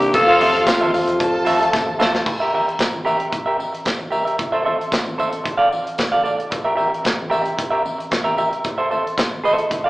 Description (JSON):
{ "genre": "disco", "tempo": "113 BPM", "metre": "4/4", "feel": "straight", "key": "unclear", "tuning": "A4 = 440 Hz", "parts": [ { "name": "growling alto saxophone", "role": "melody", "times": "0.0-1.7 s", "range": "F4 to A4", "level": "-17 LUFS", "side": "equal", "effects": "none" }, { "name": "semi-hollow electric guitar", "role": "accompaniment", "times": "0.0-9.9 s", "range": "F4 to F5", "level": "-19 LUFS", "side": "right 1 dB", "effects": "spring reverb" }, { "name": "mellow French horn section", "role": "sustained chords", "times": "0.0-2.2 s", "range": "C3 to A4", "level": "-25 LUFS", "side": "equal", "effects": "none" }, { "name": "hollow-body short-scale fingered electric bass", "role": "bass", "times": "0.0-2.2 s", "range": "F1 to C3", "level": "-36 LUFS", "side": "equal", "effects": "none" }, { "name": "modern studio drum kit", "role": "drums", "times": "0.0-9.8 s", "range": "crash cymbal, handclaps, hi-hat, kick drum, snare drum", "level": "-23 LUFS", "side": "equal", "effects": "none" }, { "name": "rich studio violin section", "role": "second line", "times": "0.1-2.0 s", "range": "F4 to A5", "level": "-22 LUFS", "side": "left 1 dB", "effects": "none" }, { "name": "congas", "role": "percussion", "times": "0.1-9.7 s", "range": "none", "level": "-35 LUFS", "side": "left 1 dB", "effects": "none" }, { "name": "tambourine", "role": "percussion", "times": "0.1-9.8 s", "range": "none", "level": "-40 LUFS", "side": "left 2 dB", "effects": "none" } ], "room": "wet large studio reverb, RT60 1.4 s", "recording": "band playing live in one room, small speaker sound", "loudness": "-17 LUFS", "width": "side -18 dB against mid", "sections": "0.0-2.3 A section; 2.3-9.9 B section", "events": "drum fill 1.7-2.3", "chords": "0.1 Fmaj7; 2.3 Gm6; 4.4 Am; 5.5 Dm/A; 6.5 Gm6; 8.6 Am" }